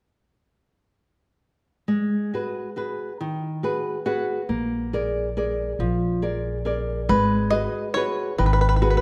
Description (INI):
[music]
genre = italian folk, Italian serenade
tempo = 138 BPM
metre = 3/4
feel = straight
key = G# minor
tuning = A4 = 441 Hz
[part]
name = flamenco guitar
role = accompaniment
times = 1.9-9.0 s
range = D#3 to F#5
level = -27 LUFS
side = equal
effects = none
[part]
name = upright bass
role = bass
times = 4.5-9.0 s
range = G#1 to A#1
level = -27 LUFS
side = equal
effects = none
[part]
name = bluegrass banjo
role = melody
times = 7.1-9.0 s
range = B4 to D#5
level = -26 LUFS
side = equal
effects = none
[sound]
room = wet recital hall reverb, RT60 1.6 s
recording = none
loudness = -24 LUFS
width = mono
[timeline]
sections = 1.9-7.1 A section; 7.1-9.0 B section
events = nylon-string guitar fill 3.8-4.5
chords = 1.9 G#m7; 4.5 A#7; 7.1 G#m7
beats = | 1.88 2.32 2.75 | 3.19 3.63 4.06 | 4.50 4.93 5.36 | 5.79 6.22 6.66 | 7.10 7.53 7.96 | 8.39 8.82